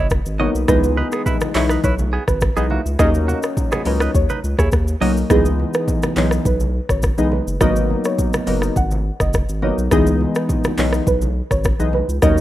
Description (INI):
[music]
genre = afrobeats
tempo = 104 BPM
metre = 4/4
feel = straight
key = C# dorian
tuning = A4 = 440 Hz
[part]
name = soft round pluck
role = melody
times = 0.0-12.4 s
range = G#4 to F#5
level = -25 LUFS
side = right 2 dB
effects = chorus
[part]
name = direct-recorded clean electric guitar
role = riff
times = 0.0-5.1 s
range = A#3 to D#5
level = -26 LUFS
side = right 4 dB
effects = harmonic tremolo
[part]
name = saturated sub bass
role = bass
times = 0.0-12.4 s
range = F#1 to D#2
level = -20 LUFS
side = equal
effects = none
[part]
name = afro-pop drum kit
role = drums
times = 0.1-12.4 s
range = handclaps, hi-hat, kick drum, rim click, shaker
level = -20 LUFS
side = equal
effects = none
[part]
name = glassy digital keys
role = accompaniment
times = 0.4-12.4 s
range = E3 to D#4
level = -20 LUFS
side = left 1 dB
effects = chorus
[part]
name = congas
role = percussion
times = 0.4-12.4 s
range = none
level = -30 LUFS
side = right 2 dB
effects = none
[sound]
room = digital ambience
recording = rough home demo mix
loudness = -16 LUFS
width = side -14 dB against mid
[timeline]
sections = 0.0-5.3 A section; 5.3-12.4 A section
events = none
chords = 0.0 C#m7; 3.0 G#7sus4 (rootless); 5.3 C#m7; 7.6 G#m7; 9.9 C#m7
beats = 0.11 | 0.68 1.26 1.84 2.42 | 2.99 3.57 4.15 4.72 | 5.30 5.88 6.45 7.03 | 7.61 8.18 8.76 9.34 | 9.91 10.49 11.07 11.65 | 12.22